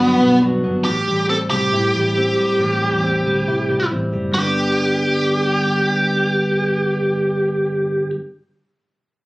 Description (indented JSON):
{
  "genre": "indie pop",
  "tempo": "138 BPM",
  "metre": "4/4",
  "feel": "straight",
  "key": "G major",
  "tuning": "A4 = 440 Hz",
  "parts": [
    { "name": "biting lead guitar", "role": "melody", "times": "0.0-8.1 s", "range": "B3 to A4", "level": "-17 LUFS", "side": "equal", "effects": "overdrive, slapback echo" },
    { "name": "dark studio string section", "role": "sustained chords", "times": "0.0-0.8 s", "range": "D4 to F#5", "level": "-32 LUFS", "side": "equal", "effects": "none" },
    { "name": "direct-recorded clean electric guitar", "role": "arpeggios", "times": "0.0-8.2 s", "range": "G2 to E4", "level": "-20 LUFS", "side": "equal", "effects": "none" },
    { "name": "vintage muted picked electric bass", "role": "bass", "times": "0.0-8.1 s", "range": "F#1 to A2", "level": "-26 LUFS", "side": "equal", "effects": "none" }
  ],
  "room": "light reverb",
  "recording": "recorded on a phone in the room, studio ambience, compression",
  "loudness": "-16 LUFS",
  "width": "side -21 dB against mid",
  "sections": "0.9-4.3 A section; 4.3-7.8 B section",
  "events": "none",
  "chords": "0.0 Gmaj7; 0.9 Am7; 4.3 G"
}